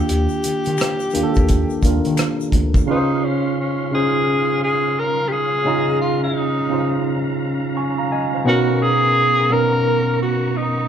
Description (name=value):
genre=R&B, neo-soul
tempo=86 BPM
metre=4/4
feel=swing 63% on 16ths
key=Db major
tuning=A4 = 440 Hz
part: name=breathy tenor saxophone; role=melody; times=0.0-10.9 s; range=Db4 to Bb4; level=-20 LUFS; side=left 1 dB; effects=none
part: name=tine electric piano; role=accompaniment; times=0.0-10.9 s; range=Cb3 to Db6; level=-20 LUFS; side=right 1 dB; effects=medium stereo tremolo
part: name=round analog bass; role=bass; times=0.0-2.8 s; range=D2 to Eb3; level=-22 LUFS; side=left 1 dB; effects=none
part: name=cloth-damped thuddy drum kit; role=drums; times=0.1-2.9 s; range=hi-hat, kick drum, rim click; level=-20 LUFS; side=equal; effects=none
part: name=egg shaker and finger snaps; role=percussion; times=0.1-2.9 s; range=none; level=-36 LUFS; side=left 5 dB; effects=none
part: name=tonewheel organ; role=sustained chords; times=2.9-10.9 s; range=Cb4 to Db6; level=-30 LUFS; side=right 2 dB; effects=fast rotary speaker, chorus vibrato
room=moderate studio reverb, RT60 0.8 s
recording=band playing live in one room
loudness=-16 LUFS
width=side -9 dB against mid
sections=0.0-2.9 A section; 2.9-10.9 B section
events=none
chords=0.0 Ebmaj9; 2.9 Dbmaj9; 8.5 Cbmaj9